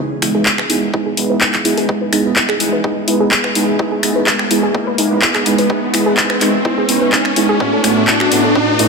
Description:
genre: progressive house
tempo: 126 BPM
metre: 4/4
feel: straight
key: E major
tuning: A4 = 440 Hz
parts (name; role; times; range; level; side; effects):
- warm analog pad; sustained chords; 0.0-8.9 s; B4 to D#6; -30 LUFS; right 3 dB; none
- soft round pluck; arpeggios; 0.0-8.8 s; C#4 to B4; -20 LUFS; left 1 dB; chorus, sidechain pumping, digital delay
- soft supersaw; stabs; 0.0-8.9 s; A2 to B4; -16 LUFS; right 2 dB; sidechain pumping, low-pass filter, digital delay
- riser; sound effects; 2.5-8.9 s; none; -20 LUFS; left 1 dB; none
- dark detuned saw bass; bass; 0.1-8.9 s; E1 to A1; -30 LUFS; left 1 dB; none
- pop drum kit; drums; 0.2-8.9 s; finger snaps, handclaps, hi-hat; -17 LUFS; left 1 dB; small room reverb
- electronic kick drum; drums; 0.5-8.7 s; none; -23 LUFS; left 1 dB; high-pass filter on kick, small room reverb
room: moderate lush hall reverb, RT60 2.0 s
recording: none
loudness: -12 LUFS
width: side -4 dB against mid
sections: 0.0-8.9 A section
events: build-up 0.0-8.9; filter sweep on synth pluck 0.0-8.9; filter sweep on supersaw synth 0.0-8.9; riser 2.5-8.9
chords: 0.0 Emaj7; 7.6 A69

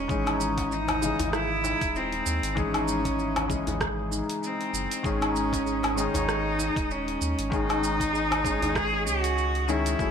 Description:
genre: organic downtempo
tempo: 97 BPM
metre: 4/4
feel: swing 56% on 16ths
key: unclear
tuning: A4 = 440 Hz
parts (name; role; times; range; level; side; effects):
- bright cello; melody; 0.0-10.1 s; B#3 to G#4; -29 LUFS; right 1 dB; ping-pong delay
- felt-muted upright piano; accompaniment; 0.0-10.1 s; C#3 to D#5; -32 LUFS; left 5 dB; sidechain pumping
- warm sub bass; bass; 0.0-10.1 s; D#1 to D#2; -32 LUFS; right 1 dB; tube saturation
- handpan; arpeggios; 0.1-10.1 s; F#3 to C#5; -33 LUFS; equal; ping-pong delay
- deep house drum kit; drums; 0.1-10.1 s; hi-hat, rim click, shaker, woodblock; -32 LUFS; right 1 dB; none
- electronic kick drum; drums; 0.1-10.1 s; none; -33 LUFS; right 1 dB; none
- djembe; percussion; 0.3-8.7 s; none; -38 LUFS; left 2 dB; none
room: light reverb, small room ambience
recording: none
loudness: -24 LUFS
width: side -7 dB against mid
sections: 0.1-10.1 A section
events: none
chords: 0.1 C#madd9; 5.0 G#sus4

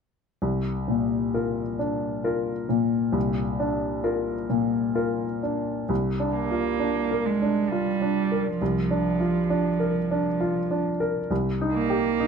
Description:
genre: neoclassical piano and strings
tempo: 66 BPM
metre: 3/4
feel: rubato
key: unclear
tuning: A4 = 440 Hz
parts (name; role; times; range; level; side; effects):
- clear baby grand piano; accompaniment; 0.4-12.3 s; C2 to Bb4; -24 LUFS; left 2 dB; none
- clear cello; second line; 6.3-12.3 s; F3 to Bb3; -25 LUFS; right 6 dB; none
room: light reverb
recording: close, detailed microphones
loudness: -23 LUFS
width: side -6 dB against mid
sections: 0.4-5.9 A section; 5.9-12.3 B section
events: none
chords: 0.4 Bb/C; 11.3 Cm

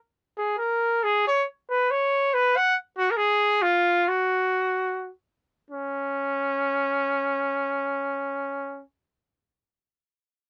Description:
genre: mexican folk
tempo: free time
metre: none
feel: none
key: unclear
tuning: A4 = 440 Hz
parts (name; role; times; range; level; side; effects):
- clear trumpet; solo; 0.4-8.8 s; C#4 to F#5; -24 LUFS; equal; none
room: little or no reverb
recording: dry, close 1970s-style studio recording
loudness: -25 LUFS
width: mono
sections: 0.0-5.7 A section; 5.7-9.3 B section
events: slowing down 2.7-5.7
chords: none

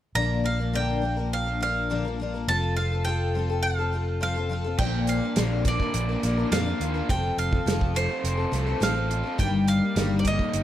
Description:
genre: folk rock and heartland rock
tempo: 104 BPM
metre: 4/4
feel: straight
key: unclear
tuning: A4 = 440 Hz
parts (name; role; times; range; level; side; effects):
- picked twelve-string acoustic guitar; accompaniment; 0.1-10.6 s; G2 to Bb4; -28 LUFS; left 5 dB; none
- fingered electric bass; bass; 0.1-10.6 s; F1 to F2; -27 LUFS; right 1 dB; none
- bowl-back mandolin; melody; 0.2-10.6 s; C5 to Bb5; -30 LUFS; right 2 dB; tape echo
- raw garage guitar; riff; 4.8-10.6 s; F2 to F4; -32 LUFS; right 3 dB; overdrive
- natural country drum kit; drums; 4.8-10.6 s; crash cymbal, hi-hat, kick drum, snare drum; -28 LUFS; right 1 dB; none
room: light reverb, small room ambience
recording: none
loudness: -23 LUFS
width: side -12 dB against mid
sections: 0.2-4.8 A section; 4.8-10.6 B section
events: none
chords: 0.2 Bb; 2.5 F; 4.8 Bb; 7.1 F; 9.4 Eb/G

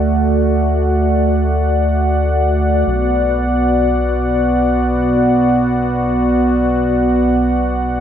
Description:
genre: synthwave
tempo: free time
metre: none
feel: none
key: unclear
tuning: A4 = 441 Hz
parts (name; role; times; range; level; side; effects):
- warm analog pad; sustained chords; 0.0-8.0 s; A3 to F#5; -14 LUFS; equal; chorus
- chorused synth bass; bass; 0.0-8.0 s; B1 to D2; -19 LUFS; equal; none
room: moderate plate reverb, RT60 3.0 s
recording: none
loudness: -13 LUFS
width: side -9 dB against mid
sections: 0.0-8.0 A section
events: none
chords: 0.0 D; 2.9 Bm

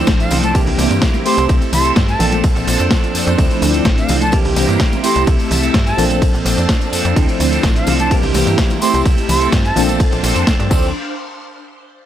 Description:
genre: filtered disco house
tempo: 127 BPM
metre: 4/4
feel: straight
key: unclear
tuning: A4 = 440 Hz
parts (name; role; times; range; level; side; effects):
- tine electric piano; accompaniment; 0.0-10.9 s; E3 to A4; -19 LUFS; equal; medium stereo tremolo, phaser, sidechain pumping
- phased string machine; sustained chords; 0.0-10.9 s; D4 to Bb5; -26 LUFS; equal; ensemble chorus, phaser, sidechain pumping
- clean electric guitar; riff; 0.0-10.9 s; E3 to A4; -24 LUFS; right 5 dB; sidechain pumping
- slap-like FM bass; bass; 0.0-10.9 s; A1 to G2; -19 LUFS; equal; sidechain pumping
- dusty soul sampler-style drum kit; drums; 0.1-10.8 s; crash cymbal, hi-hat, ride cymbal, snare drum; -22 LUFS; equal; overdrive, sidechain pumping on hats, sidechain pumping on cymbals
- electronic kick drum; drums; 0.1-10.8 s; none; -15 LUFS; equal; none
- tambourine and congas; percussion; 0.1-10.9 s; none; -25 LUFS; left 3 dB; sidechain pumping on perc
- reedy silver concert flute; melody; 0.2-9.8 s; F5 to C6; -21 LUFS; right 3 dB; sidechain pumping, analog delay
room: little or no reverb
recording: dry, gritty hardware recording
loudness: -12 LUFS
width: side -11 dB against mid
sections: 0.0-10.9 A section; 10.9-12.1 B section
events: drop 0.0-10.9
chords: 0.0 Dm7; 0.5 C7; 1.3 C6; 2.2 Bbmaj9; 3.4 Dm7; 4.3 C7; 5.0 C6; 6.0 Bbmaj9; 7.2 Dm7; 8.1 C7; 8.8 C6; 9.8 Bbmaj9; 10.7 Dm7; 10.9 N.C.

